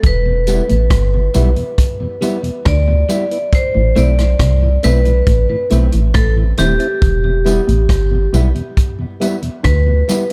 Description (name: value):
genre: roots reggae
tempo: 69 BPM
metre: 4/4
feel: straight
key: unclear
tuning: A4 = 439 Hz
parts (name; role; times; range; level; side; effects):
- vibraphone with hard mallets; melody; 0.0-10.3 s; G4 to D5; -22 LUFS; equal; tape echo
- mellow electric guitar; riff; 0.0-9.9 s; E2 to D#3; -23 LUFS; equal; subtle chorus
- soft dub sub bass; bass; 0.0-10.0 s; D#1 to D2; -16 LUFS; equal; none
- vintage drum kit; drums; 0.0-10.3 s; hi-hat, kick drum, rim click; -20 LUFS; equal; none
- mellow tonewheel organ; accompaniment; 0.3-10.3 s; E2 to E4; -26 LUFS; equal; slow rotary speaker
- electric guitar at the edge of break-up; accompaniment; 0.5-10.2 s; G3 to E4; -25 LUFS; equal; spring reverb, tape echo
- tambourine; percussion; 0.5-10.3 s; none; -32 LUFS; equal; none
room: small room ambience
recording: none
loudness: -14 LUFS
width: mono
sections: 0.0-10.3 A section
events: none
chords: 0.0 Em; 3.5 Am; 7.0 Em